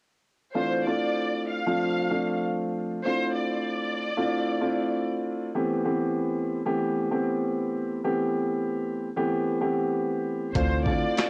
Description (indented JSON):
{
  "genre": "hip hop, boom-bap hip-hop",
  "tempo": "96 BPM",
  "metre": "4/4",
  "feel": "swing 59% on 16ths",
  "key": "D minor",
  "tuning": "A4 = 445 Hz",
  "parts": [
    { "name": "dark concert grand piano", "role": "accompaniment", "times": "0.5-11.3 s", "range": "E3 to G4", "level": "-28 LUFS", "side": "equal", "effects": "cassette tape, high-pass filter, low-pass filter" },
    { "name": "warm studio violin section", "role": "melody", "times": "0.6-5.1, 10.5-11.3 s", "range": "C5 to F5", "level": "-33 LUFS", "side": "equal", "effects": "high-pass filter, low-pass filter, cassette tape, analog delay" },
    { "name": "upright bass", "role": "bass", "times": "10.6-11.0 s", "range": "D2", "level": "-31 LUFS", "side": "equal", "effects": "none" },
    { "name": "boom bap sampler-style drum kit", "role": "drums", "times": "10.6-11.3 s", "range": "handclaps, hi-hat, kick drum, snare drum", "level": "-30 LUFS", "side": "equal", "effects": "cassette tape" }
  ],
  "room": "light reverb",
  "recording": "home recording on cassette",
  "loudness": "-27 LUFS",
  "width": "mono",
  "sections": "0.5-10.5 A section",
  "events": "none",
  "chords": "0.5 Dm7; 5.5 Am7; 10.5 Dm7"
}